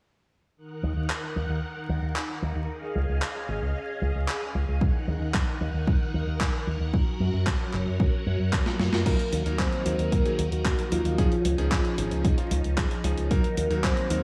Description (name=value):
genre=italo disco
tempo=113 BPM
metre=4/4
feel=straight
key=Eb minor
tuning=A4 = 440 Hz
part: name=phased string machine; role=sustained chords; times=0.6-14.2 s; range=Eb3 to Gb5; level=-36 LUFS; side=equal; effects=ensemble chorus, phaser
part: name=fingered electric bass with an envelope filter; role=bass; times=0.8-14.2 s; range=Gb1 to Gb2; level=-30 LUFS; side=equal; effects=none
part: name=gated 80s digital drum machine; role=drums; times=1.1-14.2 s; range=crash cymbal, handclaps, hi-hat, snare drum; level=-34 LUFS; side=equal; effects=gated reverb, gated reverb snare
part: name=electronic kick drum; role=drums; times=4.8-13.9 s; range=none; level=-28 LUFS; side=equal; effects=none
part: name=soft octave-layered synth lead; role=melody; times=9.1-14.2 s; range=F4 to C5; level=-33 LUFS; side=equal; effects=chorus, digital delay
part: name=clear electric grand piano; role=stabs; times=9.1-14.2 s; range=F3 to Bb4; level=-34 LUFS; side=equal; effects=none
room=light reverb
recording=vinyl crackle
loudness=-27 LUFS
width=mono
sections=0.6-9.1 A section; 9.1-14.2 B section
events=drum fill 8.7-9.1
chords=0.6 Ebm; 2.7 Dbadd9; 4.8 Ebm; 6.9 Gb; 9.1 Ebm; 11.2 Dbadd9; 13.3 Ebm